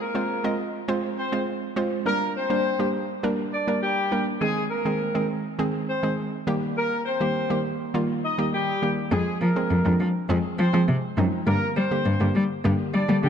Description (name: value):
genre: dance-pop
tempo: 102 BPM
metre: 4/4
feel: straight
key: unclear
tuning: A4 = 441 Hz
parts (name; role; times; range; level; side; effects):
- warm horn section; melody; 0.0-13.3 s; G3 to Eb5; -28 LUFS; left 1 dB; ping-pong delay
- hollow square pluck; accompaniment; 0.0-13.3 s; D3 to Eb5; -26 LUFS; right 2 dB; chorus
- warm cello; bass; 9.1-13.3 s; F2 to G3; -22 LUFS; left 1 dB; none
room: moderate lush hall reverb, RT60 2.5 s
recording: dark, warm production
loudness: -22 LUFS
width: side -8 dB against mid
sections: 0.0-13.3 A section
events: none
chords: 0.0 Fm; 2.1 Gm; 4.4 Ab; 6.5 Eb; 9.1 Fm; 11.5 Gm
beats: 0.29 0.88 1.47 | 2.06 2.65 3.23 3.82 | 4.41 5.00 5.59 6.18 | 6.76 7.35 7.94 8.53 | 9.12 9.71 10.29 10.88 | 11.47 12.06 12.65 13.23